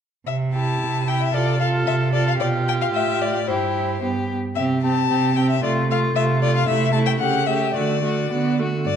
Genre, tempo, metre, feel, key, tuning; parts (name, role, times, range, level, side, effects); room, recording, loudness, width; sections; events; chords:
quick classical-period movement for string quartet; 112 BPM; 2/4; straight; C major; A4 = 441 Hz
clear violin; melody; 0.3-9.0 s; C5 to A5; -24 LUFS; left 8 dB
rich cello; bass; 0.3-9.0 s; G2 to D3; -23 LUFS; right 4 dB
clear violin; second line; 0.5-8.9 s; E4 to A4; -26 LUFS; left 2 dB
rich viola; accompaniment; 0.5-8.9 s; A3 to F4; -24 LUFS; right 2 dB
wet recital hall reverb, RT60 1.4 s; dark, warm production; -18 LUFS; side -8 dB against mid
0.3-8.9 A section
0.3 C; 1.3 Dm7/C; 2.4 G7/B; 3.5 C/G; 4.0 G; 4.6 C5; 5.6 Dm7/C (rootless); 7.2 A7/C#; 7.8 D